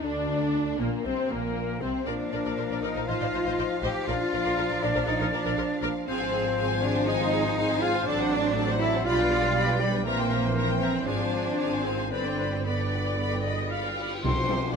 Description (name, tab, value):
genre	classical, dramatic, fast romantic movement for symphony orchestra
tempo	119 BPM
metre	4/4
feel	rubato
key	unclear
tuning	A4 = 441 Hz
part	rich symphonic violin section	melody	0.0-14.8 s	Bb3 to B5	-37 LUFS	left 2 dB	none
part	bright concert flute	second line	0.0-14.8 s	C4 to C6	-35 LUFS	left 4 dB	none
part	mellow clarinet	second line	0.0-13.7 s	G4 to G5	-35 LUFS	left 4 dB	none
part	warm symphonic violin section	second line	0.0-14.6 s	Bb3 to Ab5	-36 LUFS	left 6 dB	none
part	clear bassoon	accompaniment	0.0-14.0 s	Bb2 to G3	-36 LUFS	left 1 dB	none
part	rich symphonic viola section	accompaniment	0.0-14.8 s	G3 to F5	-34 LUFS	left 1 dB	none
part	dark French horn section	sustained chords	0.0-14.0 s	D3 to Eb4	-34 LUFS	left 4 dB	none
part	rich symphonic cello section	bass	0.0-14.8 s	C3 to G4	-30 LUFS	right 2 dB	none
part	rich symphonic double bass section	bass	0.0-14.8 s	G1 to D2	-31 LUFS	right 4 dB	none
part	cymbal swell and tam-tam	percussion	10.1-14.8 s	none	-34 LUFS	left 3 dB	none
room	light reverb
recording	none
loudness	-24 LUFS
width	side -6 dB against mid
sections	0.0-14.2 A section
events	band accent 14.2-14.7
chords	0.0 Bbadd9; 2.1 Bb; 3.1 F7/A; 4.1 Bb; 6.1 Fm/Ab; 8.1 D7/A; 9.1 G/B; 10.1 C7/Bb; 11.1 Fm/Ab; 12.1 G; 14.2 Cm